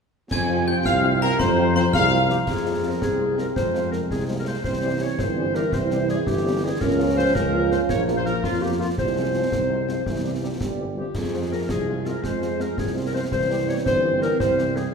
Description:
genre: military-style march for wind band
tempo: 111 BPM (dotted quarters)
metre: 6/8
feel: straight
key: F minor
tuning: A4 = 440 Hz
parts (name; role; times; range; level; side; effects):
- dark trumpet section; melody; 0.3-14.8 s; F4 to Ab5; -29 LUFS; equal; none
- glockenspiel with brass mallets; second line; 0.3-2.4 s; Bb5 to Ab6; -28 LUFS; left 3 dB; none
- mellow euphonium; second line; 0.3-14.9 s; Ab3 to Ab4; -29 LUFS; right 5 dB; none
- mellow woodwind section; second line; 0.3-14.9 s; F4 to Ab5; -26 LUFS; left 2 dB; none
- dark trombone section; sustained chords; 0.3-14.9 s; C3 to Db4; -30 LUFS; right 3 dB; none
- mellow tuba; bass; 0.3-14.9 s; G1 to F2; -26 LUFS; right 1 dB; none
- concert snare drum, clash cymbals and concert bass drum; drums; 0.3-14.9 s; none; -30 LUFS; equal; none
- mellow French horn section; accompaniment; 0.5-14.8 s; E3 to F4; -32 LUFS; left 4 dB; none
room: wet scoring stage reverb, RT60 1.8 s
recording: minimal, uncompressed stereo recording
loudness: -20 LUFS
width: side -5 dB against mid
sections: 0.3-2.5 A section; 2.5-14.9 B section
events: none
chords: 0.3 Fm; 4.6 C; 6.8 Bbm/Db; 7.9 Bb5; 9.0 Fm/C; 10.1 C; 11.2 Fm; 13.3 C

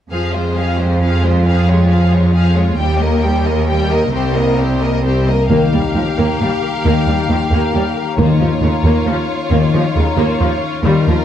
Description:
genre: cinematic, heroic adventure film score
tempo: 135 BPM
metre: 3/4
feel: straight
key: Eb mixolydian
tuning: A4 = 440 Hz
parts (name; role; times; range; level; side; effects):
- rich studio violin section; melody; 0.1-11.2 s; Bb4 to G5; -25 LUFS; left 3 dB; none
- clear symphonic violin section; second line; 0.1-11.2 s; F4 to Bb4; -24 LUFS; left 3 dB; none
- warm symphonic viola section; accompaniment; 0.1-11.2 s; Db3 to C4; -20 LUFS; equal; none
- rich symphonic cello section; bass; 0.1-11.1 s; C2 to F2; -15 LUFS; right 1 dB; none
- concert harp; arpeggios; 5.5-11.2 s; Eb3 to F5; -18 LUFS; left 6 dB; none
- timpani; percussion; 8.2-8.8 s; Eb3; -20 LUFS; right 1 dB; none
room: moderate scoring stage reverb, RT60 1.6 s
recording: dark, warm production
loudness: -12 LUFS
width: side -10 dB against mid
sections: 0.1-5.5 A section; 5.5-11.2 B section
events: build-up 5.5-11.2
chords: 0.1 Fm; 2.8 Eb; 4.1 Cm7; 5.5 Ebadd9; 8.2 Bbm/Eb

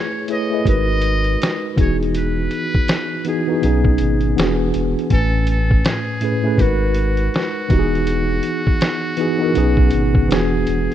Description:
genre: lo-fi hip hop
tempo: 81 BPM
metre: 4/4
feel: swing 60% on 16ths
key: unclear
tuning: A4 = 439 Hz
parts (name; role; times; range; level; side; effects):
- trumpet with metal mute; melody; 0.0-10.9 s; F#4 to D#5; -26 LUFS; equal; none
- mellow tine electric piano; accompaniment; 0.0-10.9 s; A2 to G#5; -19 LUFS; equal; medium stereo tremolo
- lo-fi sampler-style drum kit; drums; 0.3-10.9 s; hi-hat, kick drum, snare drum; -19 LUFS; equal; none
- saturated sub bass; bass; 0.7-10.9 s; E1 to B1; -19 LUFS; equal; none
room: little or no reverb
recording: rough home demo mix, cassette tape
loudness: -15 LUFS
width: side -11 dB against mid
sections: 0.0-10.9 A section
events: none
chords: 0.0 Amaj9; 0.7 G#m9; 1.8 Emaj7; 3.6 B69; 4.4 E7; 5.1 Amaj9; 6.6 G#m9; 7.7 Emaj7; 9.6 B69; 10.3 E7

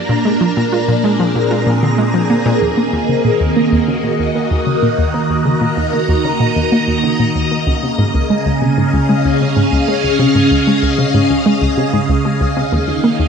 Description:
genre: ambient, sequencer-driven space music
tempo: 95 BPM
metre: 4/4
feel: straight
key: Eb dorian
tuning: A4 = 441 Hz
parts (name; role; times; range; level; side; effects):
- phased string machine; sustained chords; 0.0-13.3 s; Bb2 to Bb5; -14 LUFS; equal; ensemble chorus, phaser
- analog pluck; riff; 0.0-13.2 s; Db2 to F4; -16 LUFS; equal; chorus, analog delay
- twinkling granular texture; texture; 0.0-2.6 s; Bb5; -27 LUFS; right 1 dB; built-in reverb
room: wet plate reverb, RT60 2.3 s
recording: nothing above 10.7 kHz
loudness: -12 LUFS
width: side -6 dB against mid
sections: 0.0-2.6 A section; 2.6-13.3 B section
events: filter sweep on synth arpeggio sound 0.0-2.6, 2.6-13.3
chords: 0.1 Bb7; 2.6 Ebm; 7.7 Dbadd9; 12.7 Eb5

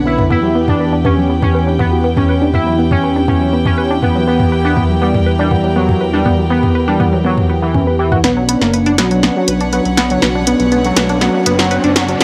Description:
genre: melodic techno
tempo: 121 BPM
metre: 4/4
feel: straight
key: B harmonic minor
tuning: A4 = 440 Hz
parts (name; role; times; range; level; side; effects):
- warm chamber string section; sustained chords; 0.0-12.2 s; D3 to G5; -26 LUFS; equal; none
- brassy analog pad; stabs; 0.0-12.2 s; C#3 to B4; -21 LUFS; equal; chorus, tape echo
- fat analog bass; bass; 0.0-12.2 s; F#1 to E2; -23 LUFS; equal; none
- resonant sweep polysynth; melody; 0.1-12.2 s; E3 to E4; -19 LUFS; equal; chorus, analog delay
- tight sequenced synth; arpeggios; 0.1-12.2 s; F#3 to B4; -21 LUFS; equal; chorus, tape echo
- punchy analog drum machine; drums; 0.2-12.2 s; hi-hat, snare drum, toms; -20 LUFS; equal; none
- riser; sound effects; 10.2-12.2 s; none; -26 LUFS; equal; none
room: little or no reverb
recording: dry, gritty hardware recording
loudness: -13 LUFS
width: mono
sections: 0.0-8.2 A section; 8.2-12.2 B section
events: filter sweep on drum 0.0-8.2; filter sweep on synth arpeggio sound 0.0-8.2; build-up 8.2-12.2; drum fill 8.2-12.2; filter sweep on analog polysynth 8.2-12.2; riser 10.2-12.2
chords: 0.3 Em; 8.2 Bmadd9

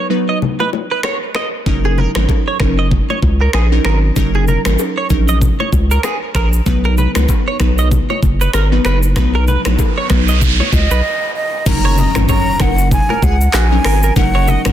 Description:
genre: afrobeats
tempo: 96 BPM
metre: 4/4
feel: swing 58% on 16ths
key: F# major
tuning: A4 = 439 Hz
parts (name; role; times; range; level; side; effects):
- direct-recorded clean electric guitar; riff; 0.0-14.6 s; F#4 to D#5; -21 LUFS; right 4 dB; analog chorus, digital delay
- glassy wavetable pluck; accompaniment; 0.1-14.7 s; F#3 to B4; -20 LUFS; equal; chorus
- congas and bongos; percussion; 0.4-14.7 s; none; -24 LUFS; left 8 dB; none
- afro-pop drum kit; drums; 1.0-14.7 s; crash cymbal, finger snaps, handclaps, hi-hat, kick drum, rim click, shaker, toms; -17 LUFS; equal; soft clipping on snare
- saturated sub bass; bass; 1.7-14.7 s; F#1 to C#2; -14 LUFS; equal; none
- noise sweep and impact; sound effects; 9.8-14.2 s; none; -23 LUFS; right 2 dB; none
- breathy jazz flute; melody; 10.7-14.7 s; D#5 to A#5; -19 LUFS; equal; digital delay
room: digital ambience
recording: dense, heavily limited modern master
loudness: -12 LUFS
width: side -11 dB against mid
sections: 0.0-11.7 A section; 11.7-14.7 B section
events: break 0.0-1.7, 11.0-11.7; noise sweep 9.8-11.7; impact 11.7-14.2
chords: 0.0 B; 1.7 F#6; 6.7 B; 11.7 F#6

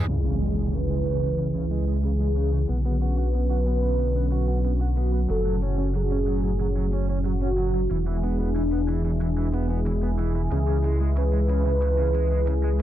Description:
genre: synthwave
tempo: 92 BPM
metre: 4/4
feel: straight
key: unclear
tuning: A4 = 440 Hz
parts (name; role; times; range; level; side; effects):
- warm analog pad; sustained chords; 0.0-12.8 s; A2 to G#4; -29 LUFS; right 1 dB; chorus
- overdriven semi-hollow guitar; riff; 0.0-12.8 s; C#3 to F#4; -33 LUFS; right 4 dB; wide subtle chorus, low-pass filter, ping-pong delay
- fat analog bass; bass; 0.0-12.8 s; E1 to C#2; -24 LUFS; equal; none
- warm velvety synth lead; melody; 0.1-12.8 s; D4 to B4; -30 LUFS; equal; chorus, phaser, digital delay
- pop drum kit; drums; 0.1-12.8 s; crash cymbal, hi-hat; -31 LUFS; equal; overdrive
- impact; sound effects; 0.1-2.7 s; none; -31 LUFS; equal; none
room: light reverb, digital ambience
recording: dense, heavily limited modern master, low-pass filter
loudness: -22 LUFS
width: side -12 dB against mid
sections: 0.1-12.8 A section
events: impact 0.1-2.7; filter sweep on analog synth pad 0.1-12.8; filter sweep 0.1-12.8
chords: 0.1 C#m; 2.7 Bmadd9; 5.3 F#m; 7.9 E; 10.5 C#m

